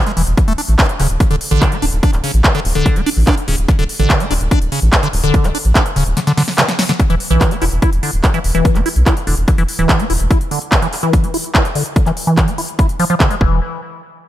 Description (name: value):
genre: psychedelic trance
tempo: 145 BPM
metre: 4/4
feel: straight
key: unclear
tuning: A4 = 440 Hz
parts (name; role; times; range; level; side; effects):
- liquid acid bass; riff; 0.0-13.6 s; C#3 to E4; -18 LUFS; equal; phaser, auto-pan, sidechain pumping, tape echo
- big-room dance drum kit; drums; 0.1-13.4 s; handclaps, hi-hat, snare drum; -19 LUFS; equal; overdrive, studio reverb
- round analog bass; bass; 0.2-10.3, 13.4-13.6 s; D1 to B1; -15 LUFS; equal; none
- electronic kick drum; drums; 0.4-13.5 s; none; -14 LUFS; equal; overdrive, studio reverb
room: little or no reverb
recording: none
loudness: -12 LUFS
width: side -13 dB against mid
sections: 0.0-7.0 A section; 7.0-13.6 B section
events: drop 0.0-7.0; drum fill 6.2-7.0; filter sweep on acid bass 7.0-13.6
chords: 0.4 D5; 7.0 E5; 13.4 N.C.